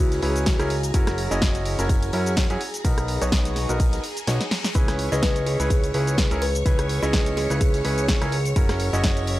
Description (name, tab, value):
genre	piano house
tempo	126 BPM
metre	4/4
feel	swing 55% on 16ths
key	C# dorian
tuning	A4 = 438 Hz
part	string machine, violins	sustained chords	0.0-9.4 s	G#4 to C#6	-34 LUFS	right 1 dB	ensemble chorus, sidechain pumping
part	clear concert grand piano	riff	0.0-9.4 s	B3 to D#5	-28 LUFS	equal	sidechain pumping
part	fat analog bass	bass	0.0-9.4 s	F#1 to F#2	-26 LUFS	equal	sidechain pumping
part	huge arena drum kit	drums	0.1-9.4 s	hi-hat, snare drum	-40 LUFS	left 1 dB	none
part	punchy analog drum machine	drums	0.1-9.4 s	cabasa, hi-hat, rim click, snare drum	-28 LUFS	equal	studio reverb
part	electronic kick drum	drums	0.5-9.1 s	none	-21 LUFS	equal	studio reverb
part	reverse cymbal	sound effects	4.0-4.8 s	none	-38 LUFS	left 7 dB	none
part	kalimba	melody	5.1-7.8 s	G#4 to B4	-30 LUFS	equal	tape echo
room	small room ambience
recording	dry, gritty hardware recording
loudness	-20 LUFS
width	side -16 dB against mid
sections	0.0-9.4 A section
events	reverse cymbal 4.0-4.8; kick drops out 4.3-4.8; drum fill 4.3-4.8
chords	0.0 C#m7; 0.9 F#7; 2.6 Bmaj7; 4.8 C#m7; 8.6 F#7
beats	0.47 | 0.94 1.42 1.90 2.37 | 2.85 3.32 3.80 4.28 | 4.75 5.23 5.70 6.18 | 6.66 7.13 7.61 8.09 | 8.56 9.04